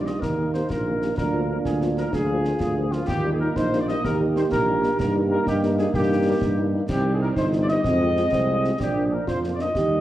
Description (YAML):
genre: military-style march for wind band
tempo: 126 BPM (dotted quarters)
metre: 6/8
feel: straight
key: Eb major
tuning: A4 = 442 Hz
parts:
  - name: dark trumpet section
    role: melody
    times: 0.0-10.0 s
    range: F4 to Eb5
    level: -26 LUFS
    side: left 1 dB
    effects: none
  - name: warm euphonium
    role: second line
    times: 0.0-10.0 s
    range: G3 to G4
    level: -27 LUFS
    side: right 2 dB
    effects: none
  - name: dark trombone section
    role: sustained chords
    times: 0.0-10.0 s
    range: F3 to F4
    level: -29 LUFS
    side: right 2 dB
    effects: none
  - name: mellow tuba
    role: bass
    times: 0.0-10.0 s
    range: G1 to G2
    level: -25 LUFS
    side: right 1 dB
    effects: none
  - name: mellow French horn section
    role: accompaniment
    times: 0.1-10.0 s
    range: Eb3 to G4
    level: -32 LUFS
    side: left 2 dB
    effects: none
  - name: concert snare drum, concert bass drum and clash cymbals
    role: drums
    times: 0.1-9.9 s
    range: none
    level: -31 LUFS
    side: left 1 dB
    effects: none
room: moderate scoring stage reverb, RT60 1.4 s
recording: worn, warbling old tape, cassette tape, warbly pitch drift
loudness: -20 LUFS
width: side -13 dB against mid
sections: 0.0-10.0 A section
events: none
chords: 0.0 Eb; 1.2 Bb7/D; 3.1 Eb; 5.0 Eb/G; 6.9 Cm; 7.8 Fm7; 8.8 Bb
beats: | 0.22 0.70 | 1.18 1.65 | 2.13 2.61 | 3.08 3.56 | 4.04 4.51 | 4.99 5.47 | 5.94 6.42 | 6.90 7.37 | 7.85 8.32 | 8.80 9.28 | 9.75